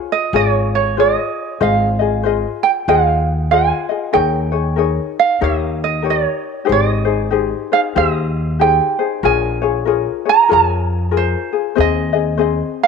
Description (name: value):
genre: Hawaiian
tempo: 94 BPM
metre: 4/4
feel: swing 61% on 8ths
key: Ab major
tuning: A4 = 440 Hz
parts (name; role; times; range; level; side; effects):
- ukulele; melody; 0.0-12.9 s; C5 to Bb5; -16 LUFS; right 8 dB; none
- ukulele; accompaniment; 0.0-12.9 s; C4 to Eb5; -18 LUFS; left 13 dB; none
- upright bass; bass; 0.3-12.6 s; Ab1 to F2; -20 LUFS; equal; none
room: wet spring reverb, RT60 1.7 s, small room ambience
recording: 1960s-style stereo with parts hard left and right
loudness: -14 LUFS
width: side -5 dB against mid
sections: 0.0-12.9 A section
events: none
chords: 0.0 Dbmaj7; 1.6 Ab6; 4.1 Eb7sus4; 5.4 Eb7; 6.7 Abmaj7; 9.2 Bbm7; 11.8 Ab/Eb